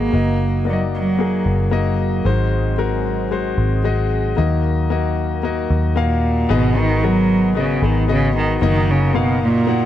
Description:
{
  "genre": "pop",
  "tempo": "113 BPM",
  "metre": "4/4",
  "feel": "straight",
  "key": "Eb minor",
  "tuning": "A4 = 443 Hz",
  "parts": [
    { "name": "warm cello", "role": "melody", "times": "0.0-2.0, 6.0-9.9 s", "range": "Bb2 to Bb3", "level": "-19 LUFS", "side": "right 3 dB", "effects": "none" },
    { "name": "clear concert grand piano", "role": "accompaniment", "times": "0.0-9.9 s", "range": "Ab2 to Gb5", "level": "-21 LUFS", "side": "left 9 dB", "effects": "none" },
    { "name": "chorused pulse-width pad", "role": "sustained chords", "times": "0.0-9.9 s", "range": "Gb3 to Bb5", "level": "-29 LUFS", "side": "right 4 dB", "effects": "none" },
    { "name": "vintage muted fingered electric bass", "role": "bass", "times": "0.0-9.9 s", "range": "Gb1 to Eb2", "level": "-19 LUFS", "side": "equal", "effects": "none" }
  ],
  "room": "little or no reverb",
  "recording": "dry, close 1970s-style studio recording",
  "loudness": "-16 LUFS",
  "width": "side -11 dB against mid",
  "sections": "0.0-6.5 A section; 6.5-9.9 B section",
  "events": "none",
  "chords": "0.1 Ebm/Gb; 2.3 Ab7; 4.4 Ebm; 6.5 Abm7; 8.6 Ebm/Gb"
}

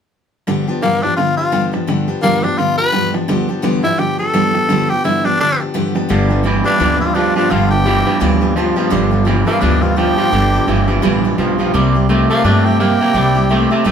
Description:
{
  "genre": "rockabilly",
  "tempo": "170 BPM",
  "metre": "4/4",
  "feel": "swing 58% on 8ths",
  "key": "G mixolydian",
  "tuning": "A4 = 440 Hz",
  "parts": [
    { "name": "picked steel-string acoustic guitar", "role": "accompaniment", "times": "0.5-13.9 s", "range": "G2 to G4", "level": "-18 LUFS", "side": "equal", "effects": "none" },
    { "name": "electric guitar at the edge of break-up", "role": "riff", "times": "0.5-13.9 s", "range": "G2 to Bb3", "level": "-17 LUFS", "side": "right 2 dB", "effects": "none" },
    { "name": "growling tenor saxophone", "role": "melody", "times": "0.8-13.8 s", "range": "Bb3 to B4", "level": "-16 LUFS", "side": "left 1 dB", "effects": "none" },
    { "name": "upright bass", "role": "bass", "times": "6.1-13.9 s", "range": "G1 to G2", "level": "-18 LUFS", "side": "left 1 dB", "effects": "none" }
  ],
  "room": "moderate studio ambience, RT60 0.5 s",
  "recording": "band playing live in one room",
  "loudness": "-12 LUFS",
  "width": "side -7 dB against mid",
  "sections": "0.5-6.1 A section; 6.1-13.9 B section",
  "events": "none",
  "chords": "0.5 G7; 11.7 C7"
}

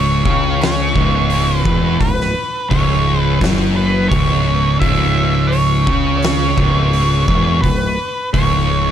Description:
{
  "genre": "stoner and doom metal",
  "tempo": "85 BPM",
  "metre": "4/4",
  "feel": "straight",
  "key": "C# minor",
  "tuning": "A4 = 443 Hz",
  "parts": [
    { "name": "octave-fuzz lead guitar", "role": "melody", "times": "0.0-8.9 s", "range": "B4 to E5", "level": "-19 LUFS", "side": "right 1 dB", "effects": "wah, distortion, ping-pong delay" },
    { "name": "thick fuzz guitar", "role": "riff", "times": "0.0-8.9 s", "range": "C#2 to C#3", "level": "-19 LUFS", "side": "left 10 dB", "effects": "distortion" },
    { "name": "thick fuzz guitar", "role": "riff", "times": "0.0-8.9 s", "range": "C#2 to C#3", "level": "-19 LUFS", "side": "right 9 dB", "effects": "distortion" },
    { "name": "growling picked electric bass", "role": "bass", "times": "0.0-8.9 s", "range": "C#1 to C#2", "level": "-20 LUFS", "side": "equal", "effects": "overdrive" },
    { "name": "oversized low-tuned drum kit", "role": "drums", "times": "0.3-8.5 s", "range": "hi-hat, kick drum, snare drum", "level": "-20 LUFS", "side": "equal", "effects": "none" }
  ],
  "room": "small room ambience",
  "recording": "dark, warm production",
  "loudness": "-13 LUFS",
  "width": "side -10 dB against mid",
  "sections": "0.0-8.9 A section",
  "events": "none",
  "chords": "0.0 C#m"
}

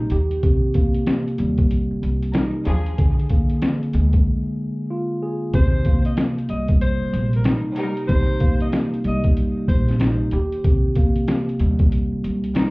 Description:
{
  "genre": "hip hop, boom-bap hip-hop",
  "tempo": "94 BPM",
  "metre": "4/4",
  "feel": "swing 63% on 16ths",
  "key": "Eb major",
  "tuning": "A4 = 439 Hz",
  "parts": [
    { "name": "mellow tine electric piano", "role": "accompaniment", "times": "0.0-12.7 s", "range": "C3 to Ab4", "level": "-22 LUFS", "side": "equal", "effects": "cassette tape, high-pass filter, low-pass filter" },
    { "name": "upright bass", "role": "bass", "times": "0.1-12.5 s", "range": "Bb1 to Eb2", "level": "-23 LUFS", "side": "equal", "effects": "none" },
    { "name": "boom bap sampler-style drum kit", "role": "drums", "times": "0.1-12.7 s", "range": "hi-hat, kick drum, snare drum", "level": "-19 LUFS", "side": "equal", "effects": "vintage 12-bit sampler grit" },
    { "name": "rich studio string section", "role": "stabs", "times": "2.3-2.9, 7.4-8.0, 12.6-12.7 s", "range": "F3 to Bb4", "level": "-29 LUFS", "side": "left 2 dB", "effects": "high-pass filter, low-pass filter, ping-pong delay" },
    { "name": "mellow tenor saxophone", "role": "melody", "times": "5.5-10.0 s", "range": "Bb4 to Eb5", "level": "-31 LUFS", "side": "left 1 dB", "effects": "high-pass filter, low-pass filter, plate reverb, ping-pong delay" }
  ],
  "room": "light reverb",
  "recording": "heard muffled through a wall, club reverb, EQ",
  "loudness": "-18 LUFS",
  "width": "side -24 dB against mid",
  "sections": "0.0-5.5 A section; 5.5-12.7 A section",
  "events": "break 4.3-5.5",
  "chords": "0.1 Cm7/Eb; 2.7 Bb7; 5.5 Eb6; 10.3 Cm7/Eb"
}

